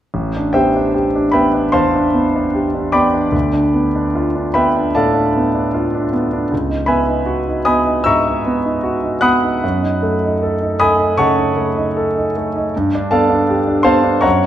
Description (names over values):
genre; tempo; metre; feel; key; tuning
classical, impressionist solo piano; 77 BPM; 4/4; rubato; unclear; A4 = 442 Hz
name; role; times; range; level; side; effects
clear concert grand piano; solo; 0.1-14.5 s; A1 to F#6; -13 LUFS; equal; none
room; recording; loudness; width
wet recital hall reverb, RT60 1.5 s; dark, warm production; -13 LUFS; side -11 dB against mid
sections
0.1-14.5 A section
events
none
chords
0.1 Am11; 3.3 Dm6; 6.5 C#m11; 9.6 F#m6; 12.7 Gadd9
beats
| 0.13 0.94 1.73 2.53 | 3.33 4.14 4.94 5.74 | 6.52 7.29 8.08 8.86 | 9.63 10.41 11.18 11.95 | 12.72 13.48 14.25